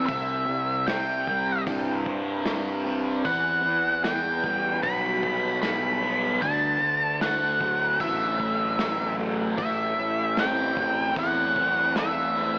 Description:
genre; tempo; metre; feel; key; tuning
psychedelic rock; 76 BPM; 4/4; straight; E minor; A4 = 442 Hz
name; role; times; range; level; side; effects
octave-fuzz lead guitar; melody; 0.0-12.6 s; E5 to B5; -24 LUFS; equal; distortion, analog delay
fuzz guitar; riff; 0.0-12.6 s; A2 to F#4; -29 LUFS; equal; distortion, phaser, analog delay
fuzz fingered electric bass; bass; 0.0-12.6 s; A1 to G2; -31 LUFS; equal; overdrive
vintage drum kit; drums; 0.1-12.1 s; hi-hat, kick drum, snare drum; -33 LUFS; equal; analog delay
room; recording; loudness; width
light reverb, small room ambience; echo-heavy mix, AM radio sound; -22 LUFS; side -27 dB against mid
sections
0.0-12.6 A section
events
none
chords
0.1 C; 3.3 Emadd9; 6.4 Dadd9; 9.6 Am

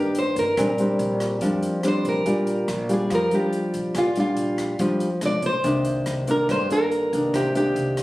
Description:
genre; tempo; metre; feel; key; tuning
bossa nova; 142 BPM; 4/4; straight; Bb major; A4 = 442 Hz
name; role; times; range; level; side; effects
nylon-string guitar; melody; 0.0-8.0 s; F4 to D5; -24 LUFS; equal; none
nylon-string guitar; accompaniment; 0.0-8.0 s; G2 to F4; -23 LUFS; equal; none
open jazz drum kit; drums; 0.1-8.0 s; hi-hat, kick drum, rim click; -38 LUFS; equal; none
upright bass; bass; 0.4-8.0 s; Bb1 to G2; -32 LUFS; equal; none
room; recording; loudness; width
little or no reverb; recorded on a phone in the room, studio reverb, compression; -20 LUFS; side -17 dB against mid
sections
0.0-2.3 A section; 2.3-8.0 A section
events
none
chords
0.0 Ebmaj7/G; 0.6 Bb69; 2.3 Bb6; 5.2 Bdim7; 5.6 Cm9

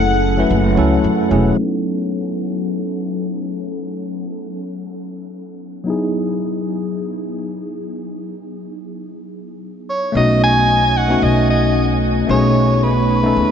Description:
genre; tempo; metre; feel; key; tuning
sunset chillout; 112 BPM; 4/4; swing 55% on 16ths; unclear; A4 = 439 Hz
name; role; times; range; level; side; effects
mellow soprano saxophone; melody; 0.0-1.1, 9.9-13.5 s; B4 to G#5; -18 LUFS; equal; diffuse ambient delay
tine electric piano; accompaniment; 0.0-13.5 s; F#3 to B4; -19 LUFS; left 1 dB; auto-pan, diffuse ambient delay
upright bass; bass; 0.0-1.5, 10.2-13.5 s; E1 to F#2; -18 LUFS; equal; tube saturation
room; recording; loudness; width
wet huge ambient reverb, RT60 8.6 s; dreamy mix soaked in reverb, low-pass filter, nothing above 7.9 kHz; -15 LUFS; side -8 dB against mid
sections
0.0-1.6 A section; 1.6-10.2 B section; 10.2-13.5 A section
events
filter sweep 1.6-10.2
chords
0.0 F#m9; 1.6 B7; 5.9 Emaj9; 10.2 B7

